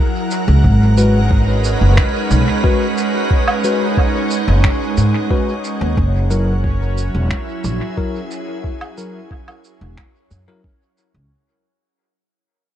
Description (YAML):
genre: ambient dub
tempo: 90 BPM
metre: 4/4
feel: straight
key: unclear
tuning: A4 = 440 Hz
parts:
  - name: soft additive organ-like pad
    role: sustained chords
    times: 0.0-11.3 s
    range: F#3 to F#5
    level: -21 LUFS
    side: right 2 dB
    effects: ensemble chorus, built-in reverb, vintage 12-bit sampler grit
  - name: electronic shaker, finger snaps and woodblock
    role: drums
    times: 0.3-11.1 s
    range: none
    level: -25 LUFS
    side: right 1 dB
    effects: overdrive, dub echo
  - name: upright bass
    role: bass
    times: 0.5-11.3 s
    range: E1 to G#2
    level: -14 LUFS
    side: equal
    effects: none
  - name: electronic kick drum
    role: drums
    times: 0.6-10.8 s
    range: none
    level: -18 LUFS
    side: equal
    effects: overdrive
  - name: bubbling stepped-filter texture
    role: texture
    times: 1.1-11.3 s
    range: C#4 to C#5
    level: -27 LUFS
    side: equal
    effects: chorus, built-in reverb
  - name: bell-like tine electric piano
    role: stabs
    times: 1.0-10.6 s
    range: F#3 to B4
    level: -24 LUFS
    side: left 4 dB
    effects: vintage 12-bit sampler grit, dub echo
room: little or no reverb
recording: echo-heavy mix, nothing above 11.0 kHz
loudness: -13 LUFS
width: side -11 dB against mid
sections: 0.0-11.3 A section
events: fade-out 4.2-11.3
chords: 0.0 F#7; 0.6 G#m7; 6.0 F#7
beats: | 0.64 1.31 1.97 2.64 | 3.31 3.97 4.64 5.31 | 5.97 6.64 7.31 7.97 | 8.64 9.31 9.97 10.64